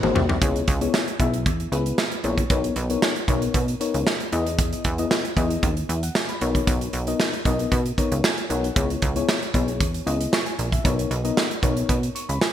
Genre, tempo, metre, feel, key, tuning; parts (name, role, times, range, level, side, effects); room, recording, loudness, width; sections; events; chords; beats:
early-eighties boogie funk; 115 BPM; 4/4; straight; C# dorian; A4 = 441 Hz
mellow FM electric piano; accompaniment; 0.0-12.5 s; A#3 to C#6; -26 LUFS; left 5 dB; chorus
plucky analog bass; bass; 0.0-12.4 s; G#1 to B2; -25 LUFS; right 1 dB
modern studio drum kit; drums; 0.0-12.5 s; hi-hat, kick drum, snare drum, toms; -23 LUFS; right 1 dB; gated reverb
moderate plate reverb, RT60 2.1 s; bright 1980s-style digital production; -20 LUFS; side -10 dB against mid
0.4-12.5 A section
drum fill 0.0-0.4; FM electric piano fill 8.0-8.8
0.4 C#m7; 2.5 Bmaj9; 4.3 Emaj7; 6.4 Bmaj9; 8.8 C#m7; 10.8 Bmaj9
| 0.41 0.94 1.46 1.98 | 2.50 3.02 3.54 4.07 | 4.59 5.11 5.63 6.15 | 6.67 7.20 7.72 8.24 | 8.76 9.28 9.80 10.33 | 10.85 11.37 11.89 12.41